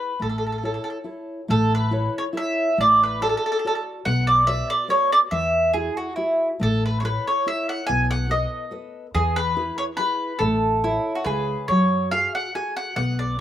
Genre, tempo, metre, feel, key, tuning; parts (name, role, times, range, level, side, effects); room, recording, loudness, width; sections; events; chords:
italian folk, Italian serenade; 141 BPM; 3/4; swing 54% on 8ths; A major; A4 = 441 Hz
mandolin; melody; 0.0-13.4 s; G#4 to G#5; -21 LUFS; equal; slapback echo
nylon-string guitar; accompaniment; 0.0-13.4 s; C#3 to D#5; -28 LUFS; left 1 dB
upright bass; bass; 0.2-13.4 s; A1 to F#2; -26 LUFS; equal
mandolin; second line; 5.7-6.5, 10.8-11.7 s; E4 to G#4; -24 LUFS; right 2 dB; slapback echo
little or no reverb; recorded outdoors, with no room sound; -20 LUFS; side -11 dB against mid
0.0-1.5 A section; 1.5-11.7 A section; 11.7-13.4 B section
0.2 A; 2.8 D/A; 4.1 Bm; 5.3 Eadd9; 6.6 A; 7.9 B7; 9.1 E; 10.4 A; 11.3 C#5; 11.7 F#madd9